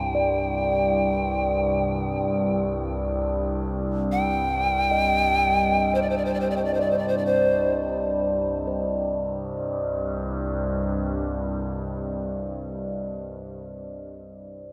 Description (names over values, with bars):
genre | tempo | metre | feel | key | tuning
world meditative, free-time meditation music | free time | none | none | C minor | A4 = 440 Hz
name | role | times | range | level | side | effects
polished pan flute | melody | 0.0-7.7 s | C5 to G5 | -27 LUFS | equal | delay
overtone-sweeping drone | drone | 0.0-12.8 s | C2 to G2 | -30 LUFS | equal | chorus, built-in reverb
bronze singing bowl | texture | 0.0-12.8 s | C5 to Eb5 | -30 LUFS | equal | none
room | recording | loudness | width
wet church reverb, RT60 3.9 s | none | -25 LUFS | mono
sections
0.0-8.7 A section; 8.7-12.5 B section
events
none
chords
none